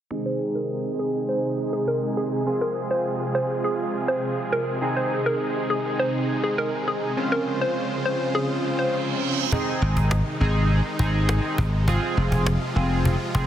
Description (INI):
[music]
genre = dance-pop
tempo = 102 BPM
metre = 4/4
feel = straight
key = Ab major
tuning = A4 = 439 Hz
[part]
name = chorused polysynth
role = accompaniment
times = 0.1-13.5 s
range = C4 to Ab4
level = -27 LUFS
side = right 2 dB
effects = low-pass filter
[part]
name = supersaw chords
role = sustained chords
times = 0.1-13.5 s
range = C3 to C5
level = -29 LUFS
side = equal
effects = low-pass filter
[part]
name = hollow square pluck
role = melody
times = 0.3-8.9 s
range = Ab4 to C5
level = -26 LUFS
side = equal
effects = chorus, low-pass filter, digital delay
[part]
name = reverse cymbal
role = sound effects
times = 8.7-9.5 s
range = none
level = -31 LUFS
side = right 8 dB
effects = none
[part]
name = cajon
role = drums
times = 9.5-13.5 s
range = none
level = -27 LUFS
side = equal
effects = none
[part]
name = dry thumbed slap bass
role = bass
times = 9.8-13.5 s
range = F1 to Ab1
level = -21 LUFS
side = equal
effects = none
[sound]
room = light reverb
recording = dense, heavily limited modern master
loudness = -21 LUFS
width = side -10 dB against mid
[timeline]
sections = 0.1-9.5 A section; 9.5-13.5 B section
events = filter sweep 0.1-9.5; reverse cymbal 8.7-9.5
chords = 0.1 Ab; 2.5 Fm; 4.8 Ab; 7.2 Dbmaj7; 9.5 Ab; 11.9 Fm